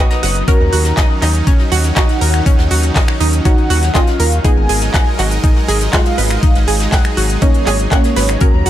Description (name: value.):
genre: progressive house.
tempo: 121 BPM.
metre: 4/4.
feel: straight.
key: unclear.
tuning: A4 = 442 Hz.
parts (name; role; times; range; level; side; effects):
wide unison pluck; melody; 0.0-8.7 s; Ab3 to D#5; -22 LUFS; equal; ping-pong delay.
airy dreamy lead; second line; 0.0-8.7 s; Db5 to D#6; -24 LUFS; equal; chorus, sidechain pumping, ping-pong delay.
supersaw pad; sustained chords; 0.0-8.7 s; Eb3 to Eb5; -22 LUFS; right 1 dB; sidechain pumping.
analog pluck; arpeggios; 0.0-8.7 s; Db4 to A#5; -21 LUFS; right 1 dB; chorus, sidechain pumping, ping-pong delay.
pop drum kit; drums; 0.1-8.7 s; finger snaps, handclaps, hi-hat; -21 LUFS; equal; none.
soft brush drum kit; drums; 0.1-8.7 s; hi-hat, snare drum; -28 LUFS; left 3 dB; sidechain pumping on hats, high-pass filter on hats, high-pass filter on snare, high-pass filter on room.
round analog bass; bass; 0.2-8.7 s; F#1 to Eb2; -15 LUFS; equal; sidechain pumping.
electronic kick drum; drums; 0.5-8.5 s; none; -12 LUFS; equal; none.
room: little or no reverb.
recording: none.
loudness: -11 LUFS.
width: side -12 dB against mid.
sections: 0.0-8.7 A section.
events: none.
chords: 0.5 Ebm7; 4.4 Ab7(no3).